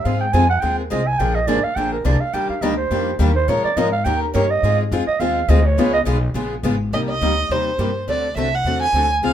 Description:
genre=acoustic string swing (jazz manouche)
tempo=209 BPM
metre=4/4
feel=swing 57% on 8ths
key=C minor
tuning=A4 = 440 Hz
part: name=growling clarinet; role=second line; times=0.0-6.0 s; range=Bb4 to Ab5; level=-20 LUFS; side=right 4 dB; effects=none
part: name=upright bass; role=bass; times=0.0-9.3 s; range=Ab1 to Bb2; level=-21 LUFS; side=equal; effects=none
part: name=picked steel-string acoustic guitar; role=accompaniment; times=0.1-9.3 s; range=C3 to Bb4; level=-23 LUFS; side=left 6 dB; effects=none
part: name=picked steel-string acoustic guitar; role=accompaniment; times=0.1-9.3 s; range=C3 to Bb4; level=-27 LUFS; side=right 3 dB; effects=none
part: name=warm violin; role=melody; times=6.9-9.3 s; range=C5 to Ab5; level=-20 LUFS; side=right 2 dB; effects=none
room=moderate studio reverb, RT60 0.8 s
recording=minimal, uncompressed stereo recording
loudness=-16 LUFS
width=side -10 dB against mid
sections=0.0-6.9 A section; 6.9-9.3 B section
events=clarinet solo 0.0-6.9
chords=0.0 Ab6; 1.2 Bb9; 2.3 Ebmaj9; 3.5 Bbm7; 4.1 Eb7; 4.6 Ab6; 5.8 Db6; 6.9 Cm7; 8.1 D9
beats=| 0.05 0.34 0.62 0.91 | 1.19 1.48 1.77 2.05 | 2.34 2.63 2.91 3.20 | 3.49 3.77 4.06 4.34 | 4.63 4.92 5.20 5.49 | 5.78 6.06 6.35 6.64 | 6.92 7.21 7.50 7.79 | 8.08 8.36 8.65 8.94 | 9.23

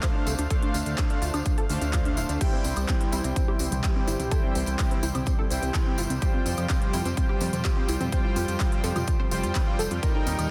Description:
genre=progressive house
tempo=126 BPM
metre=4/4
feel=straight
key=unclear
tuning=A4 = 441 Hz
part: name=unison pluck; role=arpeggios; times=0.0-10.3 s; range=C4 to C5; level=-36 LUFS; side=equal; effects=subtle chorus, sidechain pumping, tape echo
part: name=soft supersaw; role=stabs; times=0.0-10.5 s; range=G3 to G5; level=-33 LUFS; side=equal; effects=sidechain pumping, tape echo
part: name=big-room dance drum kit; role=drums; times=0.0-10.5 s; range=crash cymbal, handclaps, hi-hat, woodblock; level=-38 LUFS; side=equal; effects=none
part: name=electronic kick drum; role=drums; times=0.0-10.1 s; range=none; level=-28 LUFS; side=equal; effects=none
part: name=tambourine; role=percussion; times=0.0-10.5 s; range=none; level=-42 LUFS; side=equal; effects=none
part: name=fat analog bass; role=bass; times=0.3-10.5 s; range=D1 to F2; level=-32 LUFS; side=equal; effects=sidechain pumping
part: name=airy breathy pad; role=sustained chords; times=2.4-10.5 s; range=Bb2 to G4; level=-39 LUFS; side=equal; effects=none
part: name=electronic congas and toms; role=percussion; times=2.6-10.4 s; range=none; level=-41 LUFS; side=equal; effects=none
room=light reverb, digital ambience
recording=dense, heavily limited modern master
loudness=-26 LUFS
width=mono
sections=0.0-10.5 A section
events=filter sweep on synth pluck 0.0-10.5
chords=0.0 Dm7; 2.4 C; 6.2 Fsus2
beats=0.03 | 0.51 0.98 1.46 1.93 | 2.41 2.89 3.36 3.84 | 4.32 4.79 5.27 5.74 | 6.22 6.70 7.17 7.65 | 8.12 8.60 9.08 9.55 | 10.03

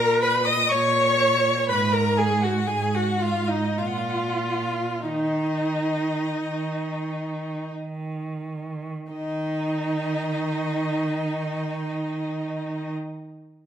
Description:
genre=classical, slow romantic movement for string quartet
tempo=42-62 BPM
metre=3/4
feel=rubato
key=unclear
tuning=A4 = 442 Hz
part: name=rich violin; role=melody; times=0.0-12.9 s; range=Eb5 to Eb6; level=-28 LUFS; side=left 4 dB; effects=none
part: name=rich violin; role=second line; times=0.0-12.9 s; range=Eb4 to Eb5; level=-28 LUFS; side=left 2 dB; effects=none
part: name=rich viola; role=accompaniment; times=0.0-12.9 s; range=Eb4 to Eb5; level=-28 LUFS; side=right 2 dB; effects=none
part: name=rich cello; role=bass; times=0.0-12.9 s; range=Ab2 to Eb3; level=-28 LUFS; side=right 4 dB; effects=none
room=wet stone room reverb, RT60 1.1 s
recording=none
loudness=-22 LUFS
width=side -9 dB against mid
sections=0.0-9.1 A section; 9.1-13.1 B section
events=slowing down 0.2-9.1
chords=0.0 Bbmadd11; 1.7 Abm13; 3.8 Bb5; 5.0 N.C.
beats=0.71 | 1.68 2.69 3.78 | 5.04 6.37 7.73 | 9.11 10.41 11.74

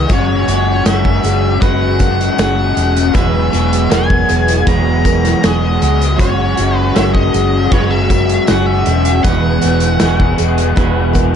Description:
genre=rock, shoegaze and dream pop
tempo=79 BPM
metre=4/4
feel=straight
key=unclear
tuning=A4 = 444 Hz
part: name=octave-fuzz lead guitar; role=melody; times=0.0-11.4 s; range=C#5 to A#5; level=-21 LUFS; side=equal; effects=distortion, slapback echo
part: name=picked twelve-string acoustic guitar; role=arpeggios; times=0.0-11.4 s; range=F#4 to C#5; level=-24 LUFS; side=right 11 dB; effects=wide subtle chorus, slapback echo
part: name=clean electric guitar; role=riff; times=0.0-11.4 s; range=E2 to F#4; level=-18 LUFS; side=right 11 dB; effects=reverse reverb
part: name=raw garage guitar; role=riff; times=0.0-11.4 s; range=E2 to G#4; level=-17 LUFS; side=left 12 dB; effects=overdrive, analog chorus
part: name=hollow-body short-scale fingered electric bass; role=bass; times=0.0-11.4 s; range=E1 to C#2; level=-16 LUFS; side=equal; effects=none
part: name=loose indie drum kit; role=drums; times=0.1-11.3 s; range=hi-hat, kick drum, snare drum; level=-17 LUFS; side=equal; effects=none
part: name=tambourine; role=percussion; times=0.1-11.3 s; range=none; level=-34 LUFS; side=left 18 dB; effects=none
room=small room ambience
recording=dark, warm production, nothing above 10.6 kHz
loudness=-11 LUFS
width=side -8 dB against mid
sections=0.0-11.4 A section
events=none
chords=0.0 Eadd9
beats=| 0.11 0.87 1.63 2.39 | 3.15 3.92 4.68 5.44 | 6.20 6.96 7.73 8.49 | 9.25 10.01 10.77

